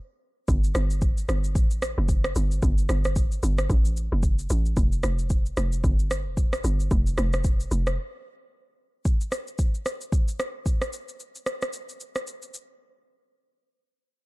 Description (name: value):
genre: amapiano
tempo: 112 BPM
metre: 4/4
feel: swing 58% on 16ths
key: unclear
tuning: A4 = 440 Hz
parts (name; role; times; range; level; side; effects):
- hollow log drum bass; bass; 0.5-8.0 s; F1 to A1; -24 LUFS; equal; none
- afro-pop drum kit; drums; 0.5-12.7 s; kick drum, rim click, shaker; -25 LUFS; equal; none
room: digital ambience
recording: dark, warm production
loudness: -23 LUFS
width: side -21 dB against mid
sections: 0.0-9.1 A section; 9.1-13.3 B section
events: break 0.0-0.5, 8.0-9.1, 12.8-13.3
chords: none